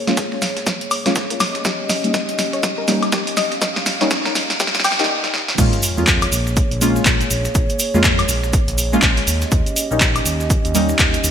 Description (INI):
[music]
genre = deep house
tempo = 122 BPM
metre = 4/4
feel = swing 60% on 16ths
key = Bb dorian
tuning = A4 = 441 Hz
[part]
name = dark analog pad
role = sustained chords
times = 0.0-11.3 s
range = Bb3 to F5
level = -26 LUFS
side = equal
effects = chorus, sidechain pumping
[part]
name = deep mellow chord stab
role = stabs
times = 0.1-11.0 s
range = G3 to F4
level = -22 LUFS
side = equal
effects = chorus, sidechain pumping, ping-pong delay
[part]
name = breakbeat sampler-style drum kit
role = drums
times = 0.1-11.3 s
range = hi-hat, shaker, snare drum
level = -29 LUFS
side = equal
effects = none
[part]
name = punchy analog drum machine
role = drums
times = 0.1-11.3 s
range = crash cymbal, handclaps, hi-hat, snare drum, woodblock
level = -19 LUFS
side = equal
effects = none
[part]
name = soft round pluck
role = arpeggios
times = 0.2-5.0 s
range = G4 to G5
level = -27 LUFS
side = left 4 dB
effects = chorus, vintage 12-bit sampler grit, sidechain pumping, digital delay
[part]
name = electronic kick drum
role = drums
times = 0.2-11.1 s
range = none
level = -19 LUFS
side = equal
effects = high-pass filter on kick
[part]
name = smooth gliding synth bass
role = bass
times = 5.6-11.3 s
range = Bb1 to F2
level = -22 LUFS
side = equal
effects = sidechain pumping
[part]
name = cabasa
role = percussion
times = 5.6-11.3 s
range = none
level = -26 LUFS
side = right 1 dB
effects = none
[part]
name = sub drop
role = sound effects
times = 5.6-7.6 s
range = none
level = -26 LUFS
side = equal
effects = none
[sound]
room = moderate lush hall reverb, RT60 1.8 s, digital ambience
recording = bright 1980s-style digital production, high-pass filter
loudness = -15 LUFS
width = side -8 dB against mid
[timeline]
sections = 0.0-5.6 A section; 5.6-11.3 B section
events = build-up 0.0-5.6; drum fill 0.0-5.1, 5.2-5.6; filter sweep on synth stab 0.0-5.6; filter sweep on synth arpeggio sound 0.0-5.6; filter sweep 0.0-5.6; stop 5.1-5.6; drop 5.6-11.3; impact 5.6-7.5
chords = 0.0 Bbm7; 1.4 Eb7; 5.6 Bbm7; 9.3 Eb7